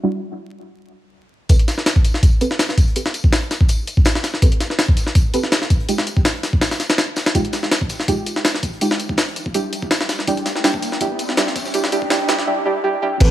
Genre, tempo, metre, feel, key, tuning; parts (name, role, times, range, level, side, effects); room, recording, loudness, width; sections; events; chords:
drum and bass, jungle; 164 BPM; 4/4; swing 53% on 16ths; A minor; A4 = 440 Hz
deep mellow chord stab; stabs; 0.0-13.3 s; G3 to B4; -22 LUFS; right 2 dB; chorus, dub echo
crunchy breakbeat drum kit; drums; 1.5-13.3 s; hi-hat, snare drum, tambourine; -31 LUFS; left 2 dB
jungle sampler-style drum kit; drums; 1.5-13.3 s; crash cymbal, hi-hat, kick drum, snare drum; -16 LUFS; equal; small room reverb
riser; sound effects; 8.8-12.5 s; -31 LUFS; left 1 dB
soft dub sub bass; bass; 13.2-13.3 s; A1; -12 LUFS; equal
light reverb, small room ambience; vinyl crackle, high-pass filter; -16 LUFS; side -13 dB against mid
0.0-1.5 A section; 1.5-13.2 B section
build-up 1.5-13.2; filter sweep on synth stab 1.5-13.2; filter sweep 1.5-13.2; riser 8.8-12.5
0.0 Em9; 1.5 Am9; 5.9 Fm9; 9.5 Em7